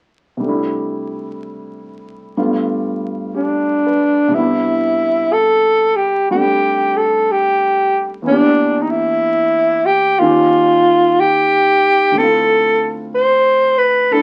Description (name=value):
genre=jazz ballad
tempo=62 BPM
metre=4/4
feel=swing 66% on 8ths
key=C major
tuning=A4 = 440 Hz
part: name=warm grand piano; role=accompaniment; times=0.4-14.2 s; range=D2 to B4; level=-23 LUFS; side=equal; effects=none
part: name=breathy alto saxophone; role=melody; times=3.4-14.2 s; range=D4 to C5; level=-15 LUFS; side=equal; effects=none
room=wet club reverb, RT60 0.5 s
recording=very old 78 rpm record, vinyl crackle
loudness=-15 LUFS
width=mono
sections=0.4-4.3 A section; 4.3-14.2 B section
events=none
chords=0.4 C6; 2.3 G7; 4.3 Cmaj9; 8.2 Em7b5; 10.2 Eb9; 12.1 Dm7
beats=| 0.39 1.37 2.35 3.32 | 4.31 5.30 6.29 7.27 | 8.24 9.22 10.19 11.16 | 12.13 13.11 14.07